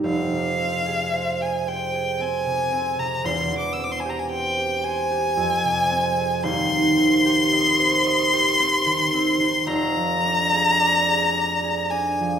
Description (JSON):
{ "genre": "classical, romantic duo for violin and harp", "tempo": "56 BPM", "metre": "3/4", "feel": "rubato", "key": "C minor", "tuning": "A4 = 440 Hz", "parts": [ { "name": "concert harp", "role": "accompaniment", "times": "0.0-12.4 s", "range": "Eb1 to Eb5", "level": "-23 LUFS", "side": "right 2 dB", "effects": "none" }, { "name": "clear violin", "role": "melody", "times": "0.1-12.4 s", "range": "F5 to E6", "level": "-21 LUFS", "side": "left 2 dB", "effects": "none" } ], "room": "wet recital hall reverb, RT60 1.3 s", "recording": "recorded in a church or concert hall", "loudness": "-19 LUFS", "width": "side -8 dB against mid", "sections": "0.0-12.4 A section", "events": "none", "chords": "0.1 Fm; 3.3 C/E; 5.4 Fm; 6.4 Cm/Eb; 9.7 Ddim/F" }